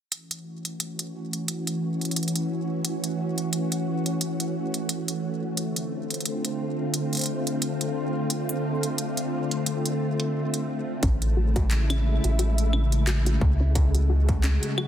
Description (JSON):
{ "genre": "IDM", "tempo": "88 BPM", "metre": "4/4", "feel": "swing 56% on 16ths", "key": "unclear", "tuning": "A4 = 440 Hz", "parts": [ { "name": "soft string machine", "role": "sustained chords", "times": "0.4-14.9 s", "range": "C#3 to F#4", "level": "-27 LUFS", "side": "equal", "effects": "ensemble chorus" }, { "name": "industrial drum kit", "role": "drums", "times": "0.1-14.9 s", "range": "claves, handclaps, hi-hat", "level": "-29 LUFS", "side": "right 1 dB", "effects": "none" }, { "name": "soft round pluck", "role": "arpeggios", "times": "11.0-14.9 s", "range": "C#4 to F#4", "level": "-34 LUFS", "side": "left 2 dB", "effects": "chorus, dub echo" }, { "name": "round analog bass", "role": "bass", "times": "11.0-14.6 s", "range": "A1 to C#2", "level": "-22 LUFS", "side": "equal", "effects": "none" }, { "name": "electronic kick drum", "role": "drums", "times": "11.0-14.4 s", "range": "none", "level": "-25 LUFS", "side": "equal", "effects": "distortion" } ], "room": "moderate echo chamber reverb, RT60 1.8 s", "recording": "dense, heavily limited modern master", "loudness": "-24 LUFS", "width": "side -10 dB against mid", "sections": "0.1-14.9 A section", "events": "filter sweep on string machine 0.1-14.9", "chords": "0.1 F#m7; 5.6 Dm7; 11.0 Amaj7", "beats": "| 0.12 0.80 1.48 2.16 | 2.85 3.53 4.21 4.89 | 5.57 6.25 6.94 7.62 | 8.30 8.98 9.66 10.35 | 11.03 11.71 12.39 13.07 | 13.76 14.44" }